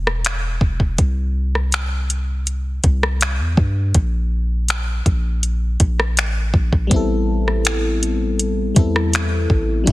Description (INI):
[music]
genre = contemporary R&B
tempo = 81 BPM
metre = 4/4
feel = straight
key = unclear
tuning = A4 = 440 Hz
[part]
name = warm 808-style bass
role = bass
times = 0.0-9.9 s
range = E1 to G2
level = -20 LUFS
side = equal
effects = none
[part]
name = smooth R&B drum kit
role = drums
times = 0.1-9.9 s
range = finger snaps, hi-hat, kick drum, rim click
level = -18 LUFS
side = equal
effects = soft clipping on snare
[part]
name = FM electric piano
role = accompaniment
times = 6.9-9.9 s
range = F#3 to A4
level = -20 LUFS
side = left 2 dB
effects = chorus
[sound]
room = digital ambience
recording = dense, heavily limited modern master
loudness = -16 LUFS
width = side -18 dB against mid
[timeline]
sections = 0.0-9.9 A section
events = none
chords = 0.0 N.C.; 1.0 C5; 3.9 N.C.; 6.9 Am9